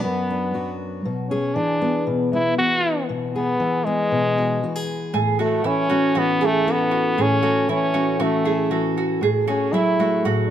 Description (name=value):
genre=acoustic folk duo or small band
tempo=118 BPM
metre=4/4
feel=straight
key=unclear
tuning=A4 = 440 Hz
part: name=stopped French horn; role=melody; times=0.0-10.2 s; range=G#3 to F#4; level=-22 LUFS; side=equal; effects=none
part: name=fingerpicked steel-string acoustic guitar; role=accompaniment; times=0.0-10.5 s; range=F#2 to A4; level=-22 LUFS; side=left 2 dB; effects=none
part: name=mandolin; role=arpeggios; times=5.1-10.5 s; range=E4 to G#4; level=-24 LUFS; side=right 6 dB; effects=none
room=light reverb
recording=close, detailed microphones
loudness=-18 LUFS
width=side -10 dB against mid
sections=0.0-10.5 A section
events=none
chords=0.0 Bm; 1.1 Eadd9/B; 5.1 F#madd9/A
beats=0.03 0.54 | 1.05 1.56 2.07 2.58 | 3.09 3.60 4.11 4.62 | 5.13 5.64 6.15 6.66 | 7.17 7.68 8.20 8.71 | 9.22 9.73 10.24